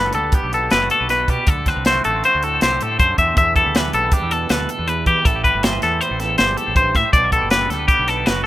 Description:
math rock and midwest emo; 159 BPM; 5/4; straight; A4 = 440 Hz
twangy electric guitar; accompaniment; 0.0-8.5 s; E2 to A4; -26 LUFS; right 10 dB
twangy electric guitar; arpeggios; 0.0-8.5 s; G4 to E5; -17 LUFS; left 2 dB; analog delay
fuzz fingered electric bass; bass; 0.0-8.4 s; F#1 to E3; -25 LUFS; equal; overdrive
crisp fusion drum kit; drums; 0.1-8.4 s; hi-hat, kick drum, snare drum; -20 LUFS; equal
little or no reverb; rough home demo mix; -15 LUFS; side -15 dB against mid
0.0-8.5 A section
0.0 Gmaj7; 1.5 D7; 3.4 Em7; 5.3 Am7; 7.1 Gmaj7
0.34 0.72 1.10 | 1.48 1.85 2.23 2.61 2.99 | 3.37 3.74 4.12 4.50 4.88 | 5.25 5.63 6.01 6.39 6.76 | 7.14 7.52 7.90 8.27

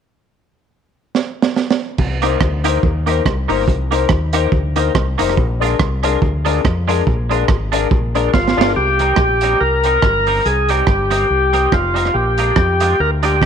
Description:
ska; 142 BPM; 4/4; swing 57% on 8ths; C minor; A4 = 440 Hz
crunchy breakbeat drum kit; drums; 1.1-13.5 s; crash cymbal, hi-hat, kick drum, rim click, snare drum; -18 LUFS; right 3 dB
deep dub fingered electric bass; bass; 2.0-13.5 s; F1 to F2; -19 LUFS; left 1 dB
clean electric guitar; accompaniment; 2.2-13.4 s; G3 to Bb4; -23 LUFS; right 11 dB; analog chorus, slapback echo
warm upright piano; stabs; 2.2-8.7 s; D4 to C5; -20 LUFS; left 15 dB
overdriven tonewheel organ; melody; 8.3-13.5 s; F4 to Bb4; -15 LUFS; left 1 dB; slow rotary speaker
light reverb, studio reverb; 1960s-style stereo with parts hard left and right; -13 LUFS; side -8 dB against mid
0.3-2.0 A section; 2.0-8.8 B section; 8.8-13.5 C section
drum fill 1.1-2.0, 8.3-8.8
0.3 N.C.; 2.0 Cm7; 5.4 Bb7; 8.8 Cm7; 12.1 Bb7
| 0.30 0.72 1.14 1.57 | 1.99 2.41 2.83 3.26 | 3.68 4.11 4.53 4.95 | 5.37 5.80 6.22 6.64 | 7.07 7.49 7.91 8.34 | 8.76 9.18 9.61 10.03 | 10.45 10.87 11.30 11.72 | 12.14 12.57 12.99 13.41

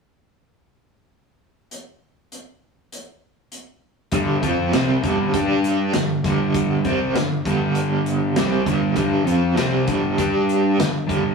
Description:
classic rock; 99 BPM; 4/4; straight; A4 = 440 Hz
big rock drum kit; drums; 1.7-11.2 s; hi-hat, kick drum, snare drum; -27 LUFS; equal
crunchy overdriven guitar; riff; 4.1-11.3 s; G2 to G4; -22 LUFS; right 4 dB; tremolo
overdriven semi-hollow guitar; riff; 4.1-11.3 s; G2 to G4; -22 LUFS; left 3 dB
fuzz picked electric bass; bass; 4.1-11.3 s; G1 to G2; -27 LUFS; equal; overdrive
moderate stone room reverb, RT60 1.1 s; rough rehearsal-room recording, tube saturation, small room ambience; -18 LUFS; side -5 dB against mid
1.7-4.1 A section; 4.1-11.3 B section
1.7 N.C.; 4.1 G5
| 1.71 2.31 2.92 3.52 | 4.13 4.74 5.34 5.95 | 6.55 7.16 7.76 8.37 | 8.98 9.58 10.19 10.79

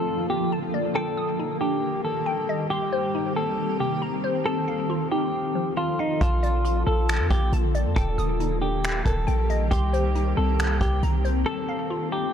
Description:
hip hop, atmospheric cloud-rap; 137 BPM; 4/4; half-time; Bb major; A4 = 440 Hz
clean electric guitar; melody; 0.0-12.3 s; Eb4 to A4; -28 LUFS; left 1 dB; low-pass filter, tape echo
granular cloud pad; sustained chords; 0.0-12.3 s; D3 to A4; -28 LUFS; left 1 dB; built-in reverb, sidechain pumping
glassy wavetable pluck; arpeggios; 0.0-12.3 s; C3 to Eb6; -31 LUFS; left 2 dB; chorus, low-pass filter, tape echo
warm 808-style bass; bass; 6.2-11.4 s; Eb1 to F2; -24 LUFS; equal
vintage brush drum kit; drums; 6.2-11.4 s; finger snaps, hi-hat, kick drum; -26 LUFS; equal
small room ambience; -22 LUFS; side -8 dB against mid
0.0-12.3 A section
break 11.5-12.3
0.0 Bbmaj7; 1.0 Ebmaj7; 2.7 Cm7; 4.5 F7; 6.2 Bbmaj7; 8.0 Ebmaj7; 9.7 Cm7; 11.5 F7
0.08 0.52 | 0.96 1.39 1.83 2.27 | 2.71 3.15 3.58 4.02 | 4.46 4.90 5.34 5.77 | 6.21 6.65 7.09 7.53 | 7.96 8.40 8.84 9.28 | 9.71 10.15 10.59 11.03 | 11.47 11.90

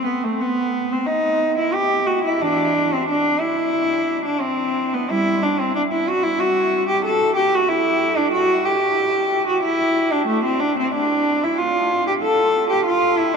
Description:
classical, baroque-style suite movement for unaccompanied cello; 92 BPM; 4/4; rubato; E minor; A4 = 440 Hz
rich cello; solo; 0.0-13.4 s; E3 to A4; -17 LUFS; equal
wet huge ambient reverb, RT60 8.7 s; in a vast, echoing space; -17 LUFS; side -5 dB against mid
0.0-13.4 A section
0.39 1.06 1.74 | 2.42 3.09 3.75 4.42 | 5.09 5.75 6.38 7.03 | 7.67 8.31 8.97 9.62 | 10.27 10.93 11.57 12.21 | 12.86

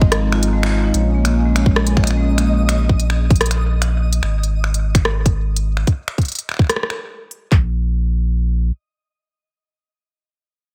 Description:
IDM; 146 BPM; 4/4; straight; Bb minor; A4 = 440 Hz
warbly nostalgic lead; melody; 0.0-0.7 s; Eb5; -37 LUFS; equal
phased analog pad; sustained chords; 0.0-4.2 s; F3 to Eb4; -25 LUFS; equal; phaser, chorus, sidechain pumping
vibraphone with medium hard mallets; arpeggios; 0.0-2.6 s; Ab3 to Eb5; -25 LUFS; equal; low-pass filter, analog delay
warm sub bass; bass; 0.0-8.7 s; Ab1 to Bb1; -20 LUFS; equal
organic electronic drum kit; drums; 0.0-7.6 s; handclaps, kick drum; -16 LUFS; equal; small room ambience
organic electronic drum kit; drums; 0.1-7.4 s; finger snaps, hi-hat, rim click; -25 LUFS; equal; small room ambience, analog delay
twinkling granular texture; texture; 2.0-4.2 s; Eb5 to Eb6; -35 LUFS; equal; built-in reverb, subtle chorus, sidechain pumping
light reverb; -17 LUFS; mono
0.9-7.5 A section; 7.5-10.7 B section
break 0.1-0.9; band accent 0.6; filter sweep on analog synth pad 0.9-4.2
0.0 Fm7/Ab; 0.9 Bbm7; 4.2 N.C.
0.12 0.53 | 0.94 1.35 1.76 2.17 | 2.58 2.99 3.40 3.82 | 4.23 4.64 5.05 5.46 | 5.87 6.28 6.69 7.10 | 7.51 7.93 8.34

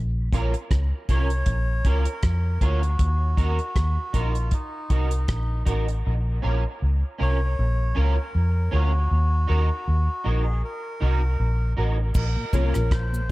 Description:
dub reggae; 79 BPM; 4/4; swing 56% on 16ths; Bb minor; A4 = 436 Hz
vintage muted fingered electric bass; bass; 0.0-13.3 s; A1 to F2; -22 LUFS; equal
electric guitar at the edge of break-up; accompaniment; 0.3-12.7 s; Db4 to Bb4; -32 LUFS; right 3 dB; ensemble chorus, dub echo
damped 70s drum kit; drums; 0.3-6.0, 12.1-13.1 s; crash cymbal, hi-hat, kick drum, rim click; -24 LUFS; equal
melodica; melody; 1.1-13.3 s; Eb4 to Db5; -32 LUFS; equal; dub echo
cabasa; percussion; 12.1-13.3 s; -44 LUFS; right 3 dB
mellow tonewheel organ; accompaniment; 12.4-13.3 s; Bb2 to Db4; -34 LUFS; left 2 dB; overdrive, chorus vibrato, slow rotary speaker, dub echo
warm upright piano; stabs; 12.5-12.8 s; Bb3 to Bb4; -31 LUFS; left 5 dB; dub echo
little or no reverb; echo-heavy mix; -21 LUFS; side -19 dB against mid
0.0-12.2 A section; 12.2-13.3 B section
part muted 6.0-12.2; break 10.6-12.2
0.0 Bbm; 3.0 Ebm; 6.0 Bbm; 9.1 Ebm; 12.2 Bbm
0.70 1.47 2.23 | 2.99 3.76 4.52 5.28 | 6.05 6.81 7.57 8.34 | 9.10 9.86 10.62 11.39 | 12.15 12.91

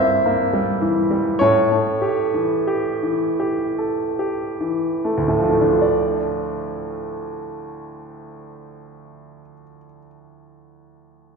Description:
classical, romantic nocturne for solo piano; 22-36 BPM (dotted quarters); 12/8; rubato; D minor; A4 = 440 Hz
bright grand piano; solo; 0.0-11.4 s; D2 to E5; -18 LUFS; equal
wet concert hall reverb, RT60 2.1 s; minimal, uncompressed stereo recording; -18 LUFS; side -4 dB against mid
0.0-5.8 A section; 5.8-11.4 B section
slowing down 0.0-5.8
0.0 Edim/G; 1.4 A7; 5.8 Dm
1.39 3.39 | 5.83 8.00 10.17

